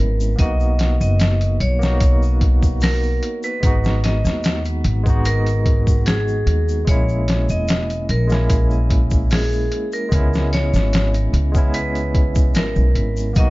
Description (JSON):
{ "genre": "trip hop", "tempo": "74 BPM", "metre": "4/4", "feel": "straight", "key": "unclear", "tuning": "A4 = 443 Hz", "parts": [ { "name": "vibraphone with hard mallets", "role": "melody", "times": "0.0-13.5 s", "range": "G#4 to D#5", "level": "-25 LUFS", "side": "right 1 dB", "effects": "tape echo" }, { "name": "barky tine electric piano", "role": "accompaniment", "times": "0.0-13.5 s", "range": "G#3 to F#4", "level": "-26 LUFS", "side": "equal", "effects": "tremolo, vintage 12-bit sampler grit, tape echo" }, { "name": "upright bass", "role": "bass", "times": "0.0-13.5 s", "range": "E1 to D#2", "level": "-18 LUFS", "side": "equal", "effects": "none" }, { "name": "egg shaker", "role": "percussion", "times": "0.2-13.5 s", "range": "none", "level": "-41 LUFS", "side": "left 6 dB", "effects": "none" }, { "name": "trip hop sampler-style drum kit", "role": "drums", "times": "0.4-13.5 s", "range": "hi-hat, kick drum, snare drum", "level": "-19 LUFS", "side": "equal", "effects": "overdrive, vintage 12-bit sampler grit, small room ambience" } ], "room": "small room ambience", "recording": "dark, warm production, nothing above 7.5 kHz", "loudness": "-15 LUFS", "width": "side -20 dB against mid", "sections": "0.0-13.5 A section", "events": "none", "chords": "0.4 Bmaj7; 3.6 G#m7; 6.9 A#m7b5; 10.1 C#m7" }